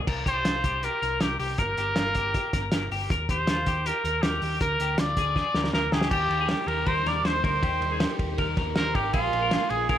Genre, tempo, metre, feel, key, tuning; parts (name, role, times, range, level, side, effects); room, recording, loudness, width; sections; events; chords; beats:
jangly indie pop; 159 BPM; 4/4; straight; Eb major; A4 = 440 Hz
twelve-string electric guitar; arpeggios; 0.0-10.0 s; F4 to C5; -31 LUFS; left 4 dB; lush chorus, analog delay
hollow-body short-scale picked electric bass; bass; 0.0-10.0 s; G1 to Eb2; -32 LUFS; equal
cloth-damped thuddy drum kit; drums; 0.1-10.0 s; crash cymbal, hi-hat, kick drum, ride cymbal, snare drum; -28 LUFS; equal
clear trumpet; melody; 0.3-10.0 s; F4 to D5; -28 LUFS; equal; analog delay
vibraphone with soft mallets; second line; 5.7-10.0 s; F5 to D6; -32 LUFS; right 6 dB
phased string machine; sustained chords; 6.1-10.0 s; C3 to F4; -36 LUFS; equal; ensemble chorus, phaser
light reverb; -23 LUFS; side -10 dB against mid
0.1-6.1 A section; 6.1-10.0 B section
drum fill 5.4-6.1
0.1 C5; 1.6 Gm7; 3.1 Eb; 4.6 Bb7/D; 6.1 Eb6; 9.1 Bb7sus4
| 0.07 0.45 0.83 1.21 | 1.58 1.96 2.34 2.72 | 3.10 3.48 3.85 4.23 | 4.61 4.99 5.36 5.74 | 6.12 6.50 6.87 7.25 | 7.63 8.01 8.38 8.76 | 9.14 9.51 9.89